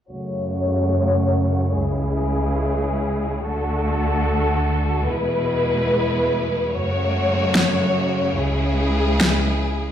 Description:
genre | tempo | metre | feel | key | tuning
heavy wobble dubstep | free time | none | none | F# minor | A4 = 440 Hz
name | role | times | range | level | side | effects
clear studio string section | sustained chords | 0.1-9.9 s | C#2 to C#5 | -19 LUFS | equal | low-pass filter
electronic snare drum | drums | 7.5-9.3 s | none | -20 LUFS | equal | overdrive
room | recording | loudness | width
light reverb, small room ambience | played on a big sound system in a bare room, stone room reverb | -18 LUFS | side -10 dB against mid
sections
0.1-9.9 A section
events
filter sweep on string section 0.1-9.9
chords
0.1 F#m; 1.8 C#m; 3.4 D; 5.1 E; 6.7 F#m; 8.4 C#m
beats
free time

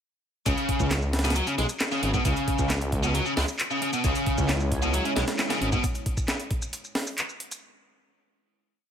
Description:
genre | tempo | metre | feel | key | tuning
breakbeat, breaks | 134 BPM | 4/4 | straight | unclear | A4 = 440 Hz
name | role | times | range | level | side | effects
biting overdriven guitar | riff | 0.5-5.8 s | Cb3 to Ab3 | -27 LUFS | equal | ping-pong delay
detuned saw bass | bass | 0.5-5.8 s | Ab1 to Db2 | -27 LUFS | equal | none
breakbeat sampler-style drum kit | drums | 0.5-7.6 s | hi-hat, kick drum, snare drum | -28 LUFS | equal | studio reverb
electronic shaker and handclaps | drums | 0.5-7.6 s | none | -34 LUFS | equal | studio reverb
dark analog pad | sustained chords | 4.0-5.8 s | Ab3 to Db5 | -35 LUFS | right 2 dB | chorus, phaser, sidechain pumping
room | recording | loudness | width
little or no reverb | none | -24 LUFS | side -8 dB against mid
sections
0.5-7.6 drop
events
drop 0.5-7.6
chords
0.5 Dbm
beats
| 0.46 0.91 1.35 1.80 | 2.25 2.70 3.15 3.59 | 4.04 4.49 4.94 5.38 | 5.83 6.28 6.73 7.18

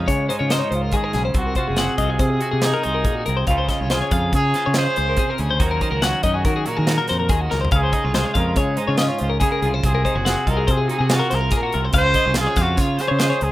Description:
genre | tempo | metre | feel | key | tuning
math rock and midwest emo | 142 BPM | 5/4 | straight | unclear | A4 = 440 Hz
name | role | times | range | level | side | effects
warm trumpet | melody | 0.0-13.5 s | Db4 to C5 | -24 LUFS | equal | none
twelve-string electric guitar | accompaniment | 0.0-13.5 s | Ab2 to C5 | -26 LUFS | right 4 dB | none
twelve-string electric guitar | arpeggios | 0.0-13.5 s | Gb4 to Gb5 | -24 LUFS | left 5 dB | spring reverb
growling fingered electric bass | bass | 0.0-13.5 s | Gb1 to Eb3 | -22 LUFS | equal | overdrive
modern studio drum kit | drums | 0.1-13.5 s | hi-hat, kick drum, snare drum, toms | -23 LUFS | equal | none
room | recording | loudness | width
light reverb | rough home demo mix | -17 LUFS | side -15 dB against mid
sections
0.0-13.5 A section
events
drum fill 7.5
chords
0.0 Dbmaj7; 1.4 Ab13; 3.5 Dbmaj7; 5.6 Ebm7; 7.7 Dbmaj7; 9.8 Ab13; 11.9 Dbmaj7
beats
0.09 0.51 0.94 | 1.36 1.79 2.21 2.64 3.06 | 3.49 3.91 4.33 4.76 5.18 | 5.61 6.03 6.45 6.88 7.30 | 7.72 8.15 8.57 8.99 9.41 | 9.84 10.26 10.68 11.10 11.53 | 11.95 12.37 12.79 13.21

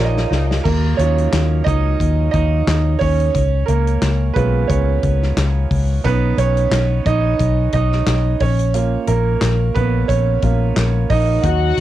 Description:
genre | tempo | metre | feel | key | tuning
piano-driven pop | 89 BPM | 4/4 | swing 56% on 16ths | Eb minor | A4 = 438 Hz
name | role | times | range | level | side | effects
clear upright piano | accompaniment | 0.0-11.8 s | Gb3 to Ab5 | -19 LUFS | right 7 dB | none
vintage muted fingered electric bass | bass | 0.0-11.8 s | Bb1 to Eb2 | -17 LUFS | left 2 dB | none
swell | sound effects | 0.0-0.7 s | none | -30 LUFS | right 1 dB | none
natural country drum kit | drums | 0.2-11.8 s | crash cymbal, handclaps, hi-hat, kick drum, snare drum | -23 LUFS | left 2 dB | cassette tape
warm symphonic violin section | second line | 11.4-11.8 s | Gb4 to Gb5 | -20 LUFS | left 10 dB | none
room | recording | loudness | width
light reverb | home recording on cassette | -14 LUFS | side -13 dB against mid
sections
0.7-11.8 A section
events
drum fill 0.0-0.7; swell 0.0-0.7; upright piano solo 0.7-11.8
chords
0.0 Bbm; 0.7 Ebmadd9; 3.4 Db; 6.0 Badd9; 8.4 Bbm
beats
| 0.66 1.33 2.00 2.68 | 3.35 4.02 4.70 5.37 | 6.04 6.72 7.39 8.07 | 8.74 9.41 10.09 10.76 | 11.44

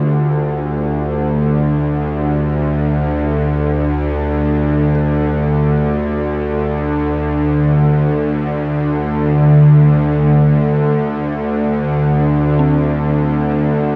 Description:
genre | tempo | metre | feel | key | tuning
dark ambient drone | free time | none | none | unclear | A4 = 442 Hz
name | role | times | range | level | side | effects
dark detuned synth bell | arpeggios | 0.0-14.0 s | C4 to A4 | -29 LUFS | equal | none
bowed-like drone | drone | 0.0-14.0 s | D2 to D3 | -16 LUFS | equal | built-in reverb
bronze singing bowl | texture | 0.0-14.0 s | G4 | -40 LUFS | equal | none
room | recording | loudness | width
wet huge ambient reverb, RT60 7.6 s | none | -15 LUFS | mono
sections
0.0-14.0 A section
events
none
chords
0.0 D5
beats
free time

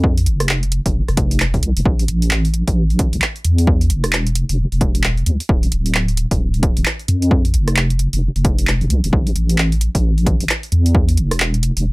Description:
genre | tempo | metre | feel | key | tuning
UK garage, two-step garage | 132 BPM | 4/4 | swing 61% on 16ths | unclear | A4 = 445 Hz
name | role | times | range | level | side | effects
deep soft wobble bass | bass | 0.0-11.9 s | D1 to F2 | -16 LUFS | equal | chorus, sidechain pumping
electronic kick drum | drums | 0.0-11.1 s | none | -17 LUFS | equal | overdrive
punchy analog drum machine | drums | 0.2-11.8 s | handclaps, hi-hat, rim click | -21 LUFS | right 1 dB | overdrive
room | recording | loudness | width
little or no reverb | none | -14 LUFS | side -24 dB against mid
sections
0.0-11.9 A section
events
none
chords
none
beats
| 0.04 0.49 0.95 1.40 | 1.85 2.31 2.76 3.22 | 3.67 4.13 4.58 5.04 | 5.49 5.95 6.40 6.86 | 7.31 7.76 8.22 8.67 | 9.13 9.58 10.04 10.49 | 10.95 11.40 11.86

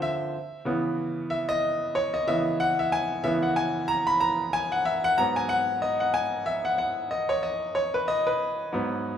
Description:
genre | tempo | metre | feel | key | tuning
soul | 93 BPM | 4/4 | swing 58% on 16ths | unclear | A4 = 440 Hz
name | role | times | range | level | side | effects
bright grand piano | solo | 0.0-9.2 s | G#2 to B5 | -24 LUFS | equal | none
room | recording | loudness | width
moderate large studio reverb, RT60 1.2 s | band playing live in one room | -24 LUFS | side -8 dB against mid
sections
0.0-9.2 A section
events
grand piano solo 0.0-9.2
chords
0.3 C#m7; 5.2 G#m7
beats
| 0.34 0.98 1.63 2.27 | 2.92 3.56 4.21 4.85 | 5.50 6.14 6.79 7.43 | 8.08 8.73

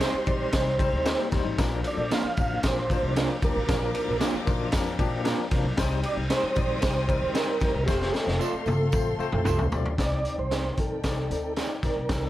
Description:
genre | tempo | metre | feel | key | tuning
uptempo 1960s-style soul | 114 BPM | 4/4 | straight | unclear | A4 = 444 Hz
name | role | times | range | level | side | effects
mellow tonewheel organ | melody | 0.0-12.3 s | G4 to F5 | -29 LUFS | right 3 dB | chorus vibrato
warm studio string section | second line | 0.0-12.3 s | Eb4 to Eb6 | -39 LUFS | left 2 dB | none
barky tine electric piano | accompaniment | 0.0-12.3 s | F3 to C6 | -32 LUFS | left 6 dB | overdrive, fast tremolo
electric guitar through a small old amp | stabs | 0.0-11.7 s | Bb3 to D5 | -33 LUFS | right 6 dB | none
raw garage drum kit | drums | 0.0-12.2 s | hi-hat, kick drum, ride cymbal, snare drum, toms | -27 LUFS | equal | none
tambourine | percussion | 0.0-12.2 s | none | -47 LUFS | right 6 dB | none
upright bass | bass | 0.1-12.3 s | F1 to C3 | -31 LUFS | equal | none
hollow-body jazz guitar | riff | 1.1-1.7 s | G3 to G4 | -34 LUFS | left 10 dB | none
clear horn section | second line | 7.9-8.0 s | A3 to C5 | -38 LUFS | left 1 dB | slapback echo
room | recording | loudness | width
studio ambience | none | -23 LUFS | side -14 dB against mid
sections
0.0-10.0 A section; 10.0-12.3 B section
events
tine electric piano fill 0.5-1.6, 4.2-5.8; drum fill 7.9-10.0; band accent 7.9-10.0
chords
0.0 Cm; 1.6 Bb; 5.8 Cm; 7.9 F; 10.0 Cmadd9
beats
0.01 0.53 1.06 | 1.58 2.11 2.63 3.16 | 3.68 4.21 4.73 5.25 | 5.78 6.30 6.83 7.35 | 7.88 8.40 8.93 9.45 | 9.98 10.51 11.04 11.56 | 12.09

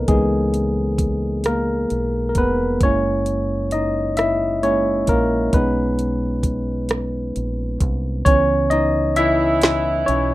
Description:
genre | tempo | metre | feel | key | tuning
slow six-eight R&B | 44 BPM (dotted quarters) | 6/8 | straight | C# dorian | A4 = 440 Hz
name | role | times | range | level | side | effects
barky tine electric piano | accompaniment | 0.0-10.3 s | E3 to E5 | -19 LUFS | left 1 dB | overdrive
deep dub fingered electric bass | bass | 0.0-10.3 s | E#1 to C#2 | -24 LUFS | equal | none
smooth R&B drum kit | drums | 0.1-10.3 s | hi-hat, kick drum, rim click, snare drum | -20 LUFS | right 1 dB | none
warm horn section | stabs | 9.2-10.3 s | E3 to E4 | -23 LUFS | right 4 dB | none
room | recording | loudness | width
light reverb | rough home demo mix | -17 LUFS | side -16 dB against mid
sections
0.0-8.3 A section; 8.3-10.3 B section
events
tine electric piano solo 0.0-8.3, 8.3-10.3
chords
0.0 C#m9; 2.8 F#9; 5.5 B69; 8.3 C#m9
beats
| 0.08 1.44 | 2.80 4.17 | 5.53 6.89 | 8.26 9.62

